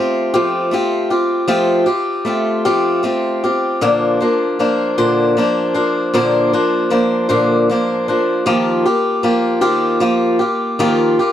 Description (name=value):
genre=rock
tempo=52 BPM (dotted quarters)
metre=6/8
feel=straight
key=unclear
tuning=A4 = 441 Hz
part: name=picked swing-style acoustic guitar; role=solo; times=0.0-11.3 s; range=Bb2 to C5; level=-14 LUFS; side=left 1 dB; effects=none
room=light reverb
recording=dry, close 1970s-style studio recording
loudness=-14 LUFS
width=side -10 dB against mid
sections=0.0-11.3 A section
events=none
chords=0.0 Fadd9; 3.8 Bbadd9; 8.5 Ebadd9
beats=0.32 | 1.49 2.65 | 3.81 4.97 | 6.13 7.30 | 8.46 9.62 | 10.79